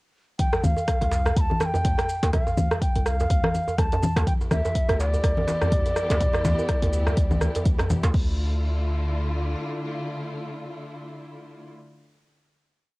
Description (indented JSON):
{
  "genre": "afro house",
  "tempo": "124 BPM",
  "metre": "4/4",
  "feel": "swing 57% on 16ths",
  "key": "D dorian",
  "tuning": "A4 = 440 Hz",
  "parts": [
    { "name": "bansuri", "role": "melody", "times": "0.4-7.7 s", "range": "D5 to B5", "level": "-28 LUFS", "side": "equal", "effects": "cassette tape" },
    { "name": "deep house drum kit", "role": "drums", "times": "0.4-8.2 s", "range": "crash cymbal, hi-hat, rim click, shaker", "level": "-30 LUFS", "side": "right 1 dB", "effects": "overdrive, cassette tape" },
    { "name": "electronic kick drum", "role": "drums", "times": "0.4-8.3 s", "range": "none", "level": "-24 LUFS", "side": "equal", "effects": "overdrive, cassette tape" },
    { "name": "congas", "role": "percussion", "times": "0.4-8.0 s", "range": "none", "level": "-29 LUFS", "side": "left 2 dB", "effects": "none" },
    { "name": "djembe", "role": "percussion", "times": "0.5-8.1 s", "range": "none", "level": "-29 LUFS", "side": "right 1 dB", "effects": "none" },
    { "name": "warm 808-style bass", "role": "bass", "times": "0.6-9.6 s", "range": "C2 to D2", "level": "-24 LUFS", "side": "equal", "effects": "tube saturation, sidechain pumping" },
    { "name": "warm studio string section", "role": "sustained chords", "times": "4.3-11.7 s", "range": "D3 to G4", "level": "-33 LUFS", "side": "left 1 dB", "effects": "sidechain pumping, cassette tape" }
  ],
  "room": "light reverb",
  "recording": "home recording on cassette",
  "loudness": "-21 LUFS",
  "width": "side -22 dB against mid",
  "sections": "0.4-8.1 groove; 8.1-12.0 final chord",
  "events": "none",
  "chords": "0.4 Dm7; 4.3 Em7/D; 8.1 Dmadd9"
}